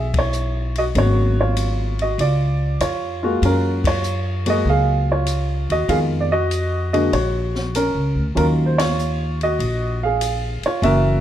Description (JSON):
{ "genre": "jazz piano trio", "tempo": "97 BPM", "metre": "4/4", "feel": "swing 68% on 8ths", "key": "Eb minor", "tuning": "A4 = 440 Hz", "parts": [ { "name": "warm baby grand piano", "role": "melody", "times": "0.0-11.2 s", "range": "Db3 to F5", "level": "-20 LUFS", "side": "right 1 dB", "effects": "plate reverb" }, { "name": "upright bass", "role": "bass", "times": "0.0-11.2 s", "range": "Gb1 to Gb2", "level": "-21 LUFS", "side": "equal", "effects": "none" }, { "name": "open jazz drum kit", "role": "drums", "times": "0.1-11.0 s", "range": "hi-hat, kick drum, ride cymbal, snare drum", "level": "-30 LUFS", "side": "left 3 dB", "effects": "none" } ], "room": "light reverb", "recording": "dark, warm production", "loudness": "-17 LUFS", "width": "side -11 dB against mid", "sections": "0.0-11.2 A section", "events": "band accent 0.0-0.3, 3.7-4.0, 8.7-9.0", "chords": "0.0 E5; 1.0 Abm11; 2.2 Db; 3.4 Gbmaj9; 5.9 Fm7b5; 7.1 Bbaug; 8.4 Ebm9" }